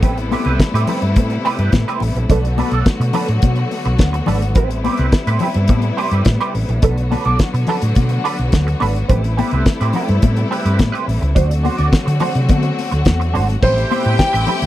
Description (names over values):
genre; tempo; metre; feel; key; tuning
disco; 106 BPM; 4/4; straight; A dorian; A4 = 440 Hz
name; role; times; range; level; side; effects
semi-hollow electric guitar; accompaniment; 0.0-14.6 s; C4 to D5; -21 LUFS; right 6 dB; wah, ensemble chorus
bright studio string section; sustained chords; 0.0-14.7 s; B2 to F#4; -23 LUFS; left 2 dB; none
hollow-body short-scale fingered electric bass; bass; 0.0-14.7 s; G#1 to D3; -17 LUFS; equal; none
damped 70s drum kit; drums; 0.0-14.7 s; crash cymbal, hi-hat, kick drum, snare drum; -15 LUFS; equal; none
congas; percussion; 0.0-14.6 s; none; -24 LUFS; left 7 dB; none
warm grand piano; melody; 13.6-14.7 s; C5 to G5; -18 LUFS; right 1 dB; none
rich studio violin section; second line; 13.6-14.7 s; G4 to G5; -22 LUFS; left 2 dB; none
room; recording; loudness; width
little or no reverb; dry, close 1970s-style studio recording; -14 LUFS; side -14 dB against mid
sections
0.0-13.6 A section; 13.6-14.7 B section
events
none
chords
0.0 Am9; 2.3 Bm7; 4.6 Am9; 6.8 Bm7; 9.1 Am9; 11.4 D7; 13.6 Am9